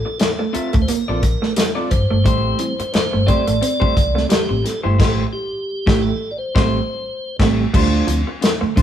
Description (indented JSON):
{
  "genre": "funk",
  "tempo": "88 BPM",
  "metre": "4/4",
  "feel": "swing 56% on 16ths",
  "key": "unclear",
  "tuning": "A4 = 440 Hz",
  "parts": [
    { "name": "tonewheel organ", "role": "melody", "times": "0.0-7.4 s", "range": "G4 to D5", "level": "-24 LUFS", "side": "equal", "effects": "slow rotary speaker" },
    { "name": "electric guitar at the edge of break-up", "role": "accompaniment", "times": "0.1-8.8 s", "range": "A3 to E5", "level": "-23 LUFS", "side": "right 1 dB", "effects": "none" },
    { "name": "electric guitar through a small old amp", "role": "riff", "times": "0.1-8.8 s", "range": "E3 to C4", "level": "-25 LUFS", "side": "right 5 dB", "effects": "none" },
    { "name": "warm soul drum kit", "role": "drums", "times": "0.2-8.8 s", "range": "crash cymbal, hi-hat, kick drum, snare drum", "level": "-18 LUFS", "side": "left 1 dB", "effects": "none" },
    { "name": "vintage muted fingered electric bass", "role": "bass", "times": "0.6-8.8 s", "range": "G1 to F2", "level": "-21 LUFS", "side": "equal", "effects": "none" },
    { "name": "mellow reed electric piano", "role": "stabs", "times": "2.3-8.8 s", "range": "A2 to D4", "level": "-27 LUFS", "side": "right 2 dB", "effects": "fast tremolo" }
  ],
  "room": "moderate stone room reverb, RT60 1.1 s",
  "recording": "band playing live in one room",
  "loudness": "-15 LUFS",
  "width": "side -10 dB against mid",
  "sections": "0.0-7.7 A section; 7.7-8.8 B section",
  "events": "band accent 5.0-7.7",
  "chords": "0.0 Bbmaj9; 2.3 Am7; 7.7 Dm7",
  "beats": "0.20 0.88 1.57 | 2.25 2.94 3.63 4.31 | 5.00 5.68 6.37 7.06 | 7.74 8.43"
}